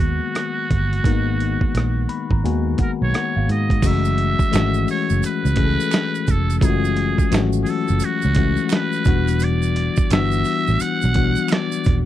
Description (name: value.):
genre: R&B, neo-soul.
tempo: 86 BPM.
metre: 4/4.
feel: swing 64% on 16ths.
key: unclear.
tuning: A4 = 439 Hz.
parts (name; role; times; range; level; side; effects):
trumpet with metal mute; melody; 0.0-12.0 s; F#4 to F#5; -25 LUFS; right 3 dB; none.
tine electric piano; accompaniment; 0.0-12.1 s; D#3 to B5; -22 LUFS; left 8 dB; none.
vintage muted fingered electric bass; bass; 0.0-12.1 s; D#1 to G#2; -20 LUFS; right 2 dB; none.
dusty soul sampler-style drum kit; drums; 0.0-12.1 s; crash cymbal, hi-hat, kick drum, rim click, snare drum; -20 LUFS; right 2 dB; none.
tube shaker and finger snaps; percussion; 3.8-12.1 s; none; -35 LUFS; right 22 dB; none.
room: little or no reverb.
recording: dry, close 1970s-style studio recording.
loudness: -17 LUFS.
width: side -12 dB against mid.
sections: 0.0-3.8 A section; 3.8-12.1 B section.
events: tine electric piano fill 1.7-3.8.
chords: 0.0 G#m9; 3.8 F#m9; 9.1 Em9.